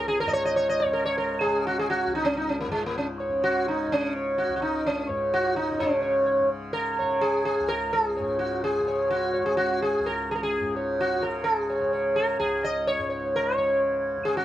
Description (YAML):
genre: indian classical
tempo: 127 BPM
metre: 4/4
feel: straight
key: Db raga durga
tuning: A4 = 436 Hz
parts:
  - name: sitar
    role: melody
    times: 0.0-14.4 s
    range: Ab3 to Eb5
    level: -23 LUFS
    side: equal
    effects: none
  - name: tanpura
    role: drone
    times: 0.0-14.4 s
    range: Db2 to Db3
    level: -34 LUFS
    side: left 1 dB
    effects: none
room: light reverb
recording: dark, warm production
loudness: -23 LUFS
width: side -13 dB against mid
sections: 0.0-5.8 A section; 5.8-14.4 B section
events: none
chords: none